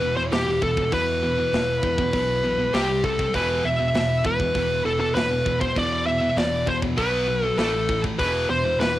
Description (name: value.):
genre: heavy metal.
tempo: 99 BPM.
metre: 4/4.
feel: straight.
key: E minor.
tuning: A4 = 440 Hz.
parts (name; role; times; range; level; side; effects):
high-gain lead guitar; melody; 0.0-9.0 s; G4 to E5; -22 LUFS; left 1 dB; distortion, cassette tape.
distorted electric guitar; riff; 0.0-9.0 s; E2 to C4; -31 LUFS; right 7 dB; overdrive, cassette tape.
distorted electric guitar; riff; 0.0-9.0 s; E2 to C4; -32 LUFS; left 1 dB; overdrive, cassette tape.
high-gain distorted guitar; riff; 0.0-9.0 s; E2 to C4; -32 LUFS; left 5 dB; distortion, cassette tape.
picked electric bass; bass; 0.0-9.0 s; E1 to E2; -29 LUFS; equal; none.
tight metal drum kit; drums; 0.3-8.9 s; hi-hat, kick drum, snare drum; -28 LUFS; equal; cassette tape.
room: light reverb.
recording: home recording on cassette.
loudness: -20 LUFS.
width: side -14 dB against mid.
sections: 0.0-9.0 A section.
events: none.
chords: 0.0 E5; 2.7 C5; 3.3 E5; 7.0 B5; 7.6 A5; 8.2 E5.